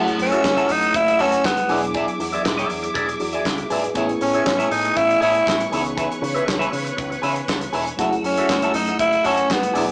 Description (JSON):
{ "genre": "disco", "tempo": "119 BPM", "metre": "4/4", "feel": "straight", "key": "F# minor", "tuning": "A4 = 441 Hz", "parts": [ { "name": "electric guitar at the edge of break-up", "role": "accompaniment", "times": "0.0-9.9 s", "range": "F#4 to E5", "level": "-27 LUFS", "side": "equal", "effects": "phaser" }, { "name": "mellow tine electric piano", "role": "accompaniment", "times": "0.0-9.9 s", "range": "D#3 to B4", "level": "-31 LUFS", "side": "equal", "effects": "none" }, { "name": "clear studio string section", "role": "sustained chords", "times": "0.0-9.9 s", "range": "A3 to E6", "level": "-31 LUFS", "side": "equal", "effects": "none" }, { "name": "picked electric bass with an envelope filter", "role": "bass", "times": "0.0-9.9 s", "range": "E1 to C#3", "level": "-34 LUFS", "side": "equal", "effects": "none" }, { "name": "warm soul drum kit", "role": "drums", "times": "0.1-9.9 s", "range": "handclaps, hi-hat, kick drum, snare drum", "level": "-29 LUFS", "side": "equal", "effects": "none" }, { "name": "growling tenor saxophone", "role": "melody", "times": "0.2-9.9 s", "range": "B3 to E4", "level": "-20 LUFS", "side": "equal", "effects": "none" } ], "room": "moderate studio reverb, RT60 0.6 s", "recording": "band playing live in one room, small speaker sound", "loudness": "-20 LUFS", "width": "mono", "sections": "0.0-9.9 A section", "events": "none", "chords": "0.0 F#m7; 1.7 E7; 4.0 Amaj7; 5.7 C#m7; 8.0 F#m7", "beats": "0.44 0.94 1.45 | 1.95 2.45 2.95 3.46 | 3.96 4.46 4.97 5.47 | 5.97 6.48 6.98 7.48 | 7.99 8.49 9.00 9.50" }